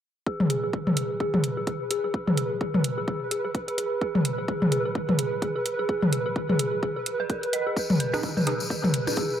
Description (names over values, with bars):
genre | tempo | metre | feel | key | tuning
minimal techno | 128 BPM | 4/4 | swing 58% on 16ths | G# minor | A4 = 436 Hz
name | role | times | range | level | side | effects
dark detuned synth bell | riff | 0.3-9.2 s | G#4 to D#5 | -29 LUFS | equal | chorus, phaser, sidechain pumping, low-pass filter, tape echo
electronic kick drum | drums | 0.3-9.3 s | none | -31 LUFS | equal | high-pass filter on kick
pulsing gated texture | texture | 0.6-9.4 s | B4 | -33 LUFS | right 4 dB | chorus, built-in reverb, sidechain pumping
electronic toms and percussion blips | percussion | 0.4-9.2 s | none | -26 LUFS | left 1 dB | overdrive, tape echo
electronic hi-hat | drums | 0.5-9.3 s | none | -30 LUFS | right 2 dB | none
tambourine | percussion | 7.8-9.4 s | none | -34 LUFS | left 4 dB | tape echo
wavetable chord stab | stabs | 8.1-8.5 s | D#4 to B4 | -33 LUFS | right 2 dB | phaser, tape echo
room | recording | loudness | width
moderate spring reverb, RT60 1.2 s | echo-heavy mix | -24 LUFS | side -9 dB against mid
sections
0.3-9.4 A section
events
filter sweep on synth bell 0.3-9.4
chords
0.3 G#m